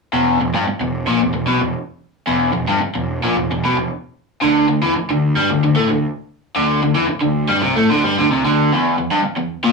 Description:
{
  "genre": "rock",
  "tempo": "112 BPM",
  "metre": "4/4",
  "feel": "straight",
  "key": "E minor",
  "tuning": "A4 = 443 Hz",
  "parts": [
    { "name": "overdriven electric guitar", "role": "riff", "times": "0.1-9.7 s", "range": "E2 to A3", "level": "-15 LUFS", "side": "equal", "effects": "none" },
    { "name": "fuzz picked electric bass", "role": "bass", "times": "0.1-8.7 s", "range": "E1 to A2", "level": "-23 LUFS", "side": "equal", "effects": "overdrive" }
  ],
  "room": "wet small room reverb, RT60 0.6 s",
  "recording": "rough rehearsal-room recording, warm saturation",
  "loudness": "-15 LUFS",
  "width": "side -3 dB against mid",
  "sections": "0.1-8.7 A section; 8.7-9.7 B section",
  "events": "none",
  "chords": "0.1 Em; 4.4 D5; 8.7 N.C."
}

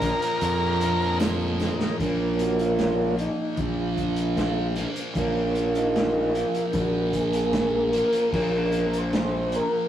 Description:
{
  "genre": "psychedelic rock",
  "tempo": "76 BPM",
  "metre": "4/4",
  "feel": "straight",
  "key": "Bb minor",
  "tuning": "A4 = 439 Hz",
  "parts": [
    { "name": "overdriven combo organ", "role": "melody", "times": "0.0-1.2 s", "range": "Bb4", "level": "-25 LUFS", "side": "left 1 dB", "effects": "none" },
    { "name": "tonewheel organ", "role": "sustained chords", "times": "0.0-9.9 s", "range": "F3 to Bb5", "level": "-25 LUFS", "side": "right 1 dB", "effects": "slow rotary speaker, overdrive" },
    { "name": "thick fuzz guitar", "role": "riff", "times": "0.0-9.9 s", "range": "Bb2 to Bb3", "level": "-30 LUFS", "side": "equal", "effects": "distortion, phaser" },
    { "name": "fuzz fingered electric bass", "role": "bass", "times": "0.0-9.6 s", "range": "Bb1 to F2", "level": "-28 LUFS", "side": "left 1 dB", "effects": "overdrive" },
    { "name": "vintage drum kit", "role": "drums", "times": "0.0-9.7 s", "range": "crash cymbal, hi-hat, kick drum, snare drum", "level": "-30 LUFS", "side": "equal", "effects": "none" },
    { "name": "tambourine", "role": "percussion", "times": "0.0-1.9 s", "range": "none", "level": "-51 LUFS", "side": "left 6 dB", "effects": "none" }
  ],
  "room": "moderate studio reverb, RT60 0.6 s",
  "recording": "rough rehearsal-room recording, tube saturation",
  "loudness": "-22 LUFS",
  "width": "side -11 dB against mid",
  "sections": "0.0-2.0 A section; 2.0-9.9 B section",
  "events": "drum fill 1.6-2.0; tonewheel organ solo 2.0-9.9",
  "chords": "0.0 Bbm"
}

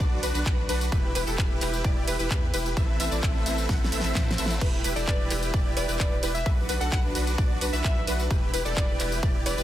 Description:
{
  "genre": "EDM, festival progressive house",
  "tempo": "130 BPM",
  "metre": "4/4",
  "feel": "straight",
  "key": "E minor",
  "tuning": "A4 = 442 Hz",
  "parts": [
    { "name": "supersaw pad", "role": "sustained chords", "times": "0.0-9.6 s", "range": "A3 to E5", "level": "-38 LUFS", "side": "right 1 dB", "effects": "none" },
    { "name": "wide unison pluck", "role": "arpeggios", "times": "0.0-9.6 s", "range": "A4 to F#5", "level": "-34 LUFS", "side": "equal", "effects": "ensemble chorus, sidechain pumping, dub echo" },
    { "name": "dense compressed supersaw", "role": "riff", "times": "0.0-9.6 s", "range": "C4 to F#5", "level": "-32 LUFS", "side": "equal", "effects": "sidechain pumping, dub echo" },
    { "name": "saturated sub bass", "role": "bass", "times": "0.0-9.6 s", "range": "E1 to A2", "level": "-30 LUFS", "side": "equal", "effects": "sidechain pumping" },
    { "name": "electronic kick drum", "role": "drums", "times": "0.0-9.3 s", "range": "none", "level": "-26 LUFS", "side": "equal", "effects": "none" },
    { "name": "pop drum kit", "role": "drums", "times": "0.0-9.6 s", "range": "crash cymbal, handclaps, hi-hat, ride cymbal, snare drum, tambourine", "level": "-32 LUFS", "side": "equal", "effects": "none" },
    { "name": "reverse cymbal", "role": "sound effects", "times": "4.2-4.6 s", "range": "none", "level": "-40 LUFS", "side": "left 2 dB", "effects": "none" },
    { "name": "plucky unison lead", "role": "melody", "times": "5.0-9.6 s", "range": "D5 to F#5", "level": "-34 LUFS", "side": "equal", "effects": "dub echo" }
  ],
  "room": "light reverb, digital ambience",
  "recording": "dense, heavily limited modern master",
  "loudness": "-23 LUFS",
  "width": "side -12 dB against mid",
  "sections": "0.0-9.6 A section",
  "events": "drum fill 3.7-4.6; reverse cymbal 4.2-4.6",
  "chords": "0.0 Bm; 0.9 Em; 2.8 Amadd9; 4.6 Em; 6.5 Bm; 8.3 Em"
}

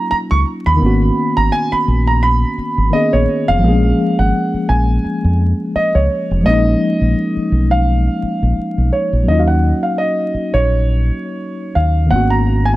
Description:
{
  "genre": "R&B, neo-soul",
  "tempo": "85 BPM",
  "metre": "4/4",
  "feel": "swing 56% on 16ths",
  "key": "unclear",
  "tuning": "A4 = 440 Hz",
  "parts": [
    { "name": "warm concert grand piano", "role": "melody", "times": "0.0-12.8 s", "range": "C#5 to C#6", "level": "-18 LUFS", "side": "right 2 dB", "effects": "tape echo" },
    { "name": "tine electric piano", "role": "accompaniment", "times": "0.0-12.8 s", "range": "D#3 to G#4", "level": "-18 LUFS", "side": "left 1 dB", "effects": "medium stereo tremolo" },
    { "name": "deep dub fingered electric bass", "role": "bass", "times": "0.1-12.8 s", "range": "E#1 to E#2", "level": "-14 LUFS", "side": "equal", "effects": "none" }
  ],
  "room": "light reverb",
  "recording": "vinyl crackle",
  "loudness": "-13 LUFS",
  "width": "side -17 dB against mid",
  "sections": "0.0-9.3 A section; 9.3-12.8 B section",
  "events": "none",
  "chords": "0.0 D#m9; 0.8 G#m11; 3.6 A#m7; 9.3 D#m7; 12.1 G#m11"
}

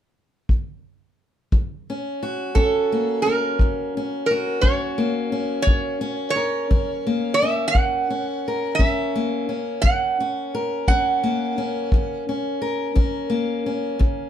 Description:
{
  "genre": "acoustic country blues, solo or duo",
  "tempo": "58 BPM (dotted quarters)",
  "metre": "12/8",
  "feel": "straight",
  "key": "F# mixolydian",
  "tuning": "A4 = 444 Hz",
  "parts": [
    { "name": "kick drum", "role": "drums", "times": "0.5-14.2 s", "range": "none", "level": "-19 LUFS", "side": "equal", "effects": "none" },
    { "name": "fingerpicked steel-string acoustic guitar", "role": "accompaniment", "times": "1.5-14.3 s", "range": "F#2 to A#4", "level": "-24 LUFS", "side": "left 2 dB", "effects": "none" },
    { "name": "metal-body resonator slide guitar", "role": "melody", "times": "2.5-12.2 s", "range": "A4 to F#5", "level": "-22 LUFS", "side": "right 3 dB", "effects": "none" }
  ],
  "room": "moderate small room reverb, RT60 0.5 s",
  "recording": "heard from further back in the room",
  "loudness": "-20 LUFS",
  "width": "side -10 dB against mid",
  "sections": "0.0-1.5 A section; 1.5-14.3 B section",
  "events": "none",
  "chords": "0.0 N.C.; 1.5 F#"
}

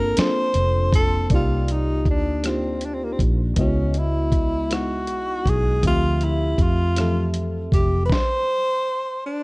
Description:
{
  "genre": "slow six-eight R&B",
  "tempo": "53 BPM (dotted quarters)",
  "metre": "6/8",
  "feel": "straight",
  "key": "unclear",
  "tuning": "A4 = 440 Hz",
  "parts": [
    { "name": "warm tenor saxophone", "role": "melody", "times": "0.0-9.4 s", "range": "Bb3 to C5", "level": "-24 LUFS", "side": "equal", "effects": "none" },
    { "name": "FM electric piano with auto-pan", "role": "accompaniment", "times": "0.0-8.1 s", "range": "E3 to E5", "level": "-27 LUFS", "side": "left 1 dB", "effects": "none" },
    { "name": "vintage muted fingered electric bass", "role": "bass", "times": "0.0-8.1 s", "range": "F1 to F2", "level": "-22 LUFS", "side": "equal", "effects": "none" },
    { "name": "dusty soul sampler-style drum kit", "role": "drums", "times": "0.2-8.3 s", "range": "hi-hat, kick drum, rim click, snare drum", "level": "-22 LUFS", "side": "equal", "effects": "none" }
  ],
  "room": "little or no reverb",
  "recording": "worn, warbling old tape, cassette tape, warbly pitch drift",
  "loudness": "-18 LUFS",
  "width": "side -25 dB against mid",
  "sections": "0.0-1.3 A section; 1.3-9.4 B section",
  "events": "none",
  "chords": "0.0 Gm11 (rootless); 1.3 Cm11; 3.6 Dbm11; 5.8 Dm11; 8.1 N.C."
}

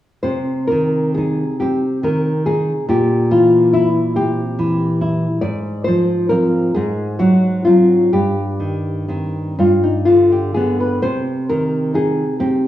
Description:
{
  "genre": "romantic duo for nylon-string guitar and classical guitar",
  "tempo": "40-49 BPM (dotted quarters)",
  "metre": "6/8",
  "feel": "rubato",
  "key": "C minor",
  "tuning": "A4 = 440 Hz",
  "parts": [
    { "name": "nylon-string guitar", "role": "melody", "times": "0.2-12.7 s", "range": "Eb4 to D5", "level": "-17 LUFS", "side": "left 2 dB", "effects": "none" },
    { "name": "nylon-string guitar", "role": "accompaniment", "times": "0.2-12.7 s", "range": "G2 to E4", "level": "-17 LUFS", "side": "right 1 dB", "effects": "none" }
  ],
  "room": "moderate recital hall reverb, RT60 1.3 s",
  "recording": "worn, warbling old tape, cassette tape, warbly pitch drift, small room reverb",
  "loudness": "-14 LUFS",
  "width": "side -13 dB against mid",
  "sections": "0.2-12.7 A section",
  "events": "none",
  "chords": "0.2 Cm; 2.9 C7/Bb; 5.4 Fm/Ab; 6.7 Ab7; 8.1 Cm/G; 9.6 G; 11.0 Cm"
}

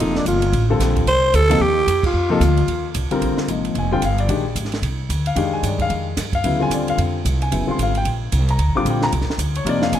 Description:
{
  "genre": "modal jazz",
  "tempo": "224 BPM",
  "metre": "4/4",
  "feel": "swing 60% on 8ths",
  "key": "F mixolydian, Bb mixolydian from 3.2 s",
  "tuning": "A4 = 440 Hz",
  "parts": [
    { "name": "growling alto saxophone", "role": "melody", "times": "0.0-2.9 s", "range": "D4 to C5", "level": "-19 LUFS", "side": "right 1 dB", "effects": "none" },
    { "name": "warm grand piano", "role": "accompaniment", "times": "0.0-10.0 s", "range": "C3 to D6", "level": "-21 LUFS", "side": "left 3 dB", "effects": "none" },
    { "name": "upright bass", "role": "bass", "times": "0.0-10.0 s", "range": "F1 to Ab2", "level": "-20 LUFS", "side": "equal", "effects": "none" },
    { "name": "compact cocktail drum kit", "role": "drums", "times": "0.0-10.0 s", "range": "crash cymbal, hi-hat, kick drum, ride cymbal, snare drum", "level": "-28 LUFS", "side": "right 3 dB", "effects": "none" }
  ],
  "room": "light reverb",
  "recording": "none",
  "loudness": "-17 LUFS",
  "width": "side -10 dB against mid",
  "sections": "0.0-3.2 A section; 3.2-10.0 B section",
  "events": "band accent 2.0",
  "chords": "0.0 F7sus4; 3.2 Bb13"
}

